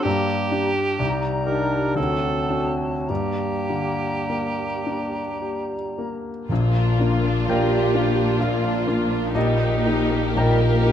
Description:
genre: classical, romantic movement for piano and orchestra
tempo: 49-65 BPM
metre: 3/4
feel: rubato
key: G minor, Bb major from 6.5 s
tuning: A4 = 440 Hz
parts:
  - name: clear grand piano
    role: melody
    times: 0.0-10.9 s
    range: Bb1 to Bb5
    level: -22 LUFS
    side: left 2 dB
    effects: none
  - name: silver concert flute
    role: second line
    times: 0.0-6.2 s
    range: A5 to Bb5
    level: -33 LUFS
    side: left 1 dB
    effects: none
  - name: warm clarinet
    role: second line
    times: 0.0-5.9 s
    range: Bb3 to Eb4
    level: -31 LUFS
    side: right 2 dB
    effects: none
  - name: warm cor anglais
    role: second line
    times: 0.0-5.9 s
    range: G4 to Bb4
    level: -28 LUFS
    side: right 4 dB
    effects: none
  - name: mellow bassoon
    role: accompaniment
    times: 0.0-6.2 s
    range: F#3 to G3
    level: -29 LUFS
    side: right 1 dB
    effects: none
  - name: rich symphonic violin section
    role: melody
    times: 6.5-10.9 s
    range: F4 to G4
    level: -30 LUFS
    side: left 1 dB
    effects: none
  - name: rich studio violin section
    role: second line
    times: 6.5-10.9 s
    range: G3 to Eb4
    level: -31 LUFS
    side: left 2 dB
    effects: none
  - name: rich symphonic double bass section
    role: bass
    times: 6.5-10.9 s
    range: Bb1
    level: -30 LUFS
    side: right 3 dB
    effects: none
  - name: warm symphonic cello section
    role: bass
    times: 6.5-10.9 s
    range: Bb2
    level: -29 LUFS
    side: right 5 dB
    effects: none
  - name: timpani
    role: percussion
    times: 6.5-7.9 s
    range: Bb2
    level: -30 LUFS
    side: equal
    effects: none
  - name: rich chamber viola section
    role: accompaniment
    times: 7.5-10.9 s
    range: Eb4 to Bb4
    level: -26 LUFS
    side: right 6 dB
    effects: none
room: light reverb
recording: close, detailed microphones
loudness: -20 LUFS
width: side -9 dB against mid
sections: 0.0-6.5 A section; 6.5-10.9 B section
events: none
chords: 0.1 Gm; 2.0 D; 3.1 Gm; 6.5 Bb; 9.4 Eb/Bb

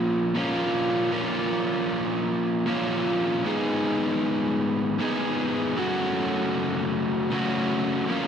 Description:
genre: rock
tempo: 78 BPM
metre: 3/4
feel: straight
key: unclear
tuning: A4 = 440 Hz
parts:
  - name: overdriven electric guitar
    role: solo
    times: 0.0-8.3 s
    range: F#2 to G#4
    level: -23 LUFS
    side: equal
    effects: slapback echo
room: wet lush hall reverb, RT60 2.3 s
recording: big arena sound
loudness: -23 LUFS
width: side -8 dB against mid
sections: 0.0-8.3 A section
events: none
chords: 0.0 A#m; 3.5 G#m; 5.8 F#m

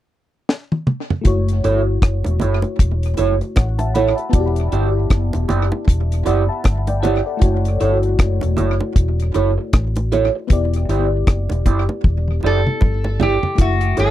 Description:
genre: lovers rock reggae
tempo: 78 BPM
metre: 4/4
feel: swing 60% on 16ths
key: unclear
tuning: A4 = 440 Hz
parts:
  - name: deep reggae drum kit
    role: drums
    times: 0.5-14.1 s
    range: hi-hat, kick drum, rim click, snare drum, toms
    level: -16 LUFS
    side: equal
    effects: none
  - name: mellow FM electric piano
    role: accompaniment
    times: 1.2-14.1 s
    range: A3 to B5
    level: -24 LUFS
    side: left 4 dB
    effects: chorus, phaser, tape echo
  - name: vintage muted fingered electric bass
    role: bass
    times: 1.3-14.1 s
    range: E1 to A1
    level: -19 LUFS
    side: equal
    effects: none
  - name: electric guitar through a small old amp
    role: stabs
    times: 1.6-14.1 s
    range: E4 to D5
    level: -19 LUFS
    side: right 6 dB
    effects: phaser
  - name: bongos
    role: percussion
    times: 2.2-13.4 s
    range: none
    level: -29 LUFS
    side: right 3 dB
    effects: tape echo
  - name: metal-body resonator slide guitar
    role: melody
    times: 12.5-14.1 s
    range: F#4 to A4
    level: -21 LUFS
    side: left 1 dB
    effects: tape echo
room: little or no reverb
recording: dry, close 1970s-style studio recording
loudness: -15 LUFS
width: side -13 dB against mid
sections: 0.0-1.3 A section; 1.3-13.6 B section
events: drum fill 0.5-1.3, 12.0-13.6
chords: 0.0 N.C.; 1.3 F#m7; 4.3 Em7; 7.4 F#m7; 10.5 Em7; 13.6 F#m7

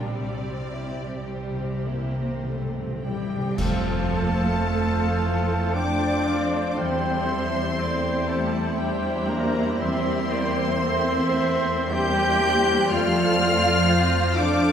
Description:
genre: classical, slow romantic movement for symphony orchestra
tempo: 49-62 BPM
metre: 3/4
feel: rubato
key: F major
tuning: A4 = 441 Hz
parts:
  - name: warm symphonic violin section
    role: melody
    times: 0.0-14.7 s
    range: C5 to G6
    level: -31 LUFS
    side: left 3 dB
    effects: none
  - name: rich symphonic violin section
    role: second line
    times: 0.0-14.7 s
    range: G3 to A4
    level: -34 LUFS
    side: left 1 dB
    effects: none
  - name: warm symphonic viola section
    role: accompaniment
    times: 0.0-14.7 s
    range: D3 to D4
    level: -31 LUFS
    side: right 2 dB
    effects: none
  - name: concert harp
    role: arpeggios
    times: 0.0-14.7 s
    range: C3 to Bb5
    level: -32 LUFS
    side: left 2 dB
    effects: none
  - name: dark symphonic cello section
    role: bass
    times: 0.0-14.7 s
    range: C3 to G4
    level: -30 LUFS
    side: right 1 dB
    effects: none
  - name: rich studio double bass section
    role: bass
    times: 0.0-14.7 s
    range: C2 to F2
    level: -29 LUFS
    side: right 2 dB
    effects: none
  - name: cymbal swell, clash cymbals and concert bass drum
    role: percussion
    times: 0.1-5.7 s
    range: none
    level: -33 LUFS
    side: equal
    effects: none
  - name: timpani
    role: percussion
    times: 0.1-3.5 s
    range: C3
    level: -33 LUFS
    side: left 1 dB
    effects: none
  - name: bright flute section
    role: second line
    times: 3.0-14.7 s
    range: G4 to G5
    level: -32 LUFS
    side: left 2 dB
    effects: none
  - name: mellow French horn section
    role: sustained chords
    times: 3.0-14.7 s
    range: G3 to G4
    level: -29 LUFS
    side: left 2 dB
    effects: none
  - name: warm trumpet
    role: stabs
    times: 3.0-14.7 s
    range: G4 to G5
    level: -30 LUFS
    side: right 2 dB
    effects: none
  - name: clear clarinet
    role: second line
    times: 3.6-14.7 s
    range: C5 to G5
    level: -31 LUFS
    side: left 1 dB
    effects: none
  - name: clear oboe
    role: second line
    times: 3.6-14.7 s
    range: C5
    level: -35 LUFS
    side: right 1 dB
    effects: none
  - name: mellow bassoon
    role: accompaniment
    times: 3.6-14.7 s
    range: A3 to C4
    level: -34 LUFS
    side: right 2 dB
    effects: none
room: wet concert hall reverb, RT60 2.4 s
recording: heard from further back in the room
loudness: -21 LUFS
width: side -8 dB against mid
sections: 0.0-3.6 A section; 3.6-14.7 B section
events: timpani fill 0.1-3.6; band accent 3.6-4.6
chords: 0.1 C; 3.6 F; 6.8 C7/E; 12.9 F

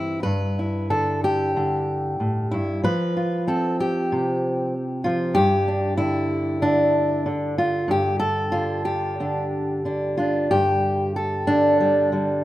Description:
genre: folk, solo fingerstyle acoustic guitar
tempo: 94 BPM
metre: 4/4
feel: rubato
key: G mixolydian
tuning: A4 = 439 Hz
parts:
  - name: fingerpicked steel-string acoustic guitar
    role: solo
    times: 0.0-12.4 s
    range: G2 to B4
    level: -20 LUFS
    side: equal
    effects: none
room: light reverb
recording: rough home demo mix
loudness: -20 LUFS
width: side -15 dB against mid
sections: 0.0-10.5 A section; 10.5-12.4 B section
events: none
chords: 0.2 G6; 2.8 Fsus2; 5.4 G5

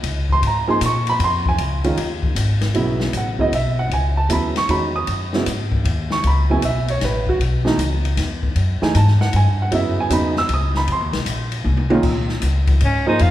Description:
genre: modal jazz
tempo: 155 BPM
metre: 3/4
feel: swing 66% on 8ths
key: F# dorian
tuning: A4 = 439 Hz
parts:
  - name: upright bass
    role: bass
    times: 0.0-13.3 s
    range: Ab1 to Bb2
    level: -19 LUFS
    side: left 1 dB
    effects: none
  - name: open jazz drum kit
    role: drums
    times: 0.0-13.3 s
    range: crash cymbal, hi-hat, kick drum, ride cymbal, snare drum, toms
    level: -24 LUFS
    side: left 2 dB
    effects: none
  - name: warm upright piano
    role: accompaniment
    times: 0.3-13.2 s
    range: A#2 to E6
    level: -20 LUFS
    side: right 2 dB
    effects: none
  - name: breathy alto saxophone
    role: melody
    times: 12.8-13.3 s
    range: Db4 to F4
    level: -19 LUFS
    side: left 1 dB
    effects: none
room: wet recital hall reverb, RT60 1.7 s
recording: recorded in a church or concert hall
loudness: -16 LUFS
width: side -13 dB against mid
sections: 0.0-2.7 A section; 2.7-12.0 A section; 12.0-13.3 A section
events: drum fill 11.7-12.0; alto saxophone solo 12.0-13.3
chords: 0.0 Eb9sus4 (rootless); 1.6 Dbsus2; 2.7 F#9sus4; 10.9 F5

